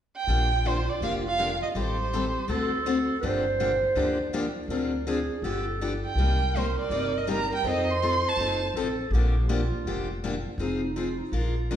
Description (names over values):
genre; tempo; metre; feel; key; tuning
acoustic string swing (jazz manouche); 163 BPM; 4/4; swing 60% on 8ths; Bb major; A4 = 440 Hz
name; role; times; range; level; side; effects
warm violin; melody; 0.2-2.8, 6.1-8.6 s; C5 to C6; -28 LUFS; right 2 dB; none
mellow clarinet; second line; 0.3-11.8 s; Eb4 to C5; -31 LUFS; right 4 dB; none
picked steel-string acoustic guitar; accompaniment; 0.3-11.8 s; C3 to Bb4; -30 LUFS; left 3 dB; none
upright bass; bass; 0.3-11.8 s; F1 to F2; -29 LUFS; equal; none
room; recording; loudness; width
wet recital hall reverb, RT60 1.4 s; recorded in a church or concert hall; -24 LUFS; side -10 dB against mid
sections
0.3-11.8 A section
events
none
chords
0.3 Bb6; 1.8 Am7b5; 2.5 D7; 3.2 Gm7; 4.7 Dm7b5; 5.4 G7; 6.2 Cm7; 7.6 F7b9; 9.1 Bb6; 10.6 Fm7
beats
| 0.28 0.65 1.02 1.39 | 1.75 2.12 2.49 2.86 | 3.23 3.60 3.96 4.33 | 4.70 5.07 5.44 5.81 | 6.17 6.54 6.91 7.28 | 7.65 8.02 8.38 8.75 | 9.12 9.49 9.86 10.23 | 10.59 10.96 11.33 11.70